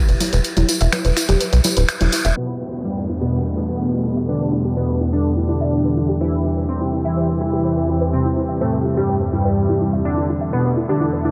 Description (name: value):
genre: melodic techno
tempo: 125 BPM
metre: 4/4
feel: straight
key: unclear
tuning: A4 = 442 Hz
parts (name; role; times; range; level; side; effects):
- soft round pluck; arpeggios; 0.0-11.3 s; E4 to E5; -28 LUFS; equal; analog chorus, delay
- tight sequencer bass; bass; 0.1-2.3 s; D1 to B1; -18 LUFS; equal; none
- punchy analog drum machine; drums; 0.1-2.3 s; congas, finger snaps, hi-hat; -25 LUFS; equal; none
- tambourine; percussion; 0.1-2.3 s; none; -28 LUFS; equal; none
- resonant sweep polysynth; melody; 2.4-11.3 s; G3 to E4; -25 LUFS; equal; chorus, tape echo
- soft supersaw; second line; 2.4-11.3 s; G2 to E3; -27 LUFS; equal; delay
- lush unison pad; sustained chords; 2.4-11.3 s; E2 to A4; -24 LUFS; equal; chorus
- downlifter; sound effects; 2.5-6.2 s; none; -36 LUFS; equal; none
- deep dark ambient pad; texture; 3.5-11.3 s; E3 to G5; -30 LUFS; equal; chorus, built-in reverb
room: moderate huge ambient reverb, RT60 6.5 s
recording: dreamy mix soaked in reverb, low-pass filter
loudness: -19 LUFS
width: mono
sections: 0.0-2.4 A section; 2.4-11.3 B section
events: filter sweep on synth arpeggio sound 0.0-2.4, 2.4-11.3; band accent 1.9; filter sweep 2.4-11.3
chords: 0.0 E5; 2.4 Gadd9/E; 6.2 C/E; 10.0 Asus2/E